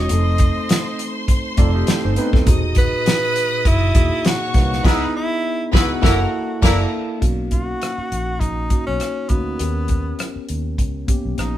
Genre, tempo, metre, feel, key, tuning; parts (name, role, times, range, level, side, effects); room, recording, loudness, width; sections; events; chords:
lush 1970s-style soul; 101 BPM; 4/4; swing 54% on 16ths; A4 = 439 Hz
warm tenor saxophone; melody; 0.0-11.6 s; B3 to D#5; -24 LUFS; equal
clear studio string section; second line; 0.0-6.8 s; A#4 to D#6; -28 LUFS; left 1 dB
mellow tine electric piano; accompaniment; 0.0-11.6 s; A#2 to B4; -25 LUFS; equal; medium stereo tremolo
vintage muted fingered electric bass; bass; 0.0-11.6 s; Eb1 to D#2; -22 LUFS; equal
damped 70s drum kit; drums; 0.1-11.5 s; crash cymbal, hi-hat, kick drum, rim click, snare drum; -17 LUFS; equal
electric guitar through a small old amp; riff; 1.6-6.8 s; C4 to F#5; -29 LUFS; right 5 dB; spring reverb
warm horn section; stabs; 4.8-6.8 s; E3 to E4; -24 LUFS; left 1 dB
light reverb; band playing live in one room; -16 LUFS; side -13 dB against mid
0.0-7.2 A section; 7.2-11.6 B section
band accent 4.8-7.2
0.1 F7#11; 2.5 Emaj9#11; 4.8 C#m9; 6.0 F#7alt; 7.2 Bmaj7; 9.6 D#7b13